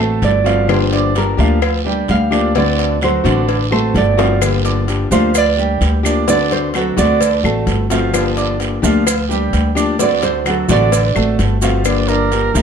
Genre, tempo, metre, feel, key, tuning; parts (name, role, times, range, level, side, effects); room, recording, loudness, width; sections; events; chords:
latin, Cuban son and guajira; 129 BPM; 4/4; straight; G minor; A4 = 440 Hz
nylon-string guitar; accompaniment; 0.0-12.6 s; D3 to G4; -20 LUFS; left 6 dB
clear baby grand piano; arpeggios; 0.0-12.6 s; D3 to D6; -20 LUFS; right 4 dB
upright bass; bass; 0.0-12.6 s; G1 to D2; -17 LUFS; equal
nylon-string guitar; melody; 0.2-11.4 s; A4 to F5; -18 LUFS; right 5 dB; plate reverb
cowbell and bongos; percussion; 0.2-12.6 s; -23 LUFS; left 4 dB
guiro; percussion; 0.2-12.6 s; -28 LUFS; right 7 dB
claves; percussion; 0.7-12.1 s; -26 LUFS; left 6 dB
maracas; percussion; 4.4-12.6 s; -26 LUFS; right 7 dB
bright reedy silver concert flute; second line; 11.9-12.6 s; Bb4 to D5; -18 LUFS; right 4 dB
moderate studio reverb, RT60 0.7 s; dark, warm production; -12 LUFS; side -7 dB against mid
0.0-11.9 A section
nylon-string guitar solo 0.0-11.9; drum fill 4.2
0.0 D7; 0.7 Gm7; 2.6 D7; 4.4 Gm7; 6.3 D7; 8.1 Gm7; 10.0 D7; 11.9 Gm7